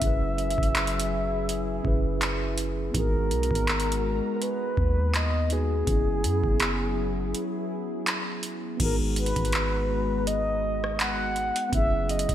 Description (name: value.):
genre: contemporary R&B.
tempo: 82 BPM.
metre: 4/4.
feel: swing 54% on 16ths.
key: G# minor.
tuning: A4 = 440 Hz.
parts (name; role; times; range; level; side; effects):
mellow horn-like synth lead; melody; 0.0-12.3 s; G#4 to F#5; -30 LUFS; left 1 dB; chorus.
mellow tine electric piano; accompaniment; 0.0-12.3 s; B3 to B4; -34 LUFS; right 4 dB; fast stereo tremolo.
lush unison pad; sustained chords; 0.0-12.3 s; F#3 to A#5; -34 LUFS; left 1 dB; chorus.
soft 808-style bass; bass; 0.0-12.3 s; F#1 to F#2; -29 LUFS; equal; none.
booming analog drum machine; drums; 0.0-12.3 s; crash cymbal, handclaps, hi-hat, kick drum, rim click; -28 LUFS; equal; gated reverb.
room: light reverb, digital ambience.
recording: bright 1980s-style digital production.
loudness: -24 LUFS.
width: side -11 dB against mid.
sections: 0.0-8.8 A section; 8.8-12.3 B section.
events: break 7.3-8.8.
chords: 0.0 F#9sus4; 2.9 G#m9; 5.9 F#9sus4; 8.8 G#m9; 11.7 F#9sus4.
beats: | 0.02 0.75 1.48 2.21 | 2.94 3.68 4.41 5.14 | 5.87 6.60 7.33 8.07 | 8.80 9.53 10.26 10.99 | 11.72.